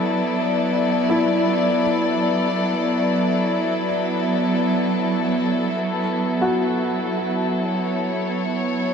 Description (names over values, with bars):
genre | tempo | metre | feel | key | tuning
ambient | free time | none | none | unclear | A4 = 440 Hz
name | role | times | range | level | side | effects
dark studio string section | sustained chords | 0.0-8.9 s | F#3 to D5 | -19 LUFS | equal | low-pass filter
felt-muted upright piano | arpeggios | 0.0-8.9 s | E4 to F#4 | -27 LUFS | left 1 dB | tape echo
room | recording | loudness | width
wet huge ambient reverb, RT60 7.5 s | cassette tape | -19 LUFS | side -6 dB against mid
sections
0.0-5.8 A section; 5.8-8.9 B section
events
filter sweep on string section 5.8-8.9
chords
0.0 Bm; 1.8 Dadd9; 5.8 F#m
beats
free time